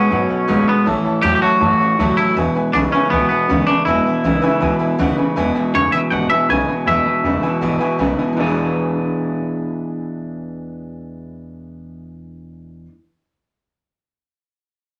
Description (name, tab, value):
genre	rockabilly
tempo	160 BPM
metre	4/4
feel	straight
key	E mixolydian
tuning	A4 = 440 Hz
part	twangy electric guitar	melody	0.0-8.0 s	B3 to G#5	-20 LUFS	equal	none
part	picked steel-string acoustic guitar	accompaniment	0.0-12.9 s	E2 to F#4	-29 LUFS	equal	none
part	warm upright piano	accompaniment	0.0-12.9 s	B4 to A5	-26 LUFS	equal	none
part	electric guitar through a small old amp	riff	0.0-12.9 s	E2 to G#4	-22 LUFS	equal	none
part	upright bass	bass	0.1-12.8 s	E1 to G#2	-29 LUFS	equal	none
room	wet studio reverb, RT60 0.6 s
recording	none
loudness	-17 LUFS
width	mono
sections	0.0-5.4 A section; 5.4-8.4 B section; 8.4-11.4 C section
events	none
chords	0.0 B7; 0.9 A7; 2.4 E7